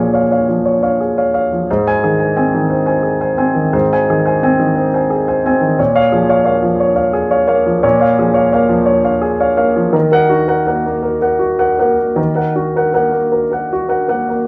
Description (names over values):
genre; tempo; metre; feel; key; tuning
neoclassical minimalist piano; 51-59 BPM (dotted quarters); 6/8; rubato; unclear; A4 = 442 Hz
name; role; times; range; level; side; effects
warm grand piano; solo; 0.0-14.5 s; Ab2 to Ab5; -14 LUFS; equal; none
room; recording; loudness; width
wet studio reverb, RT60 0.6 s; heard from further back in the room; -14 LUFS; mono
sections
0.0-14.5 A section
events
none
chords
0.0 Bbm7; 1.7 Ab; 5.8 Bbm7; 9.9 Ebm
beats
0.64 | 1.68 2.70 | 3.74 4.76 | 5.79 6.80 | 7.83 8.88 | 9.94 11.04 | 12.17 13.33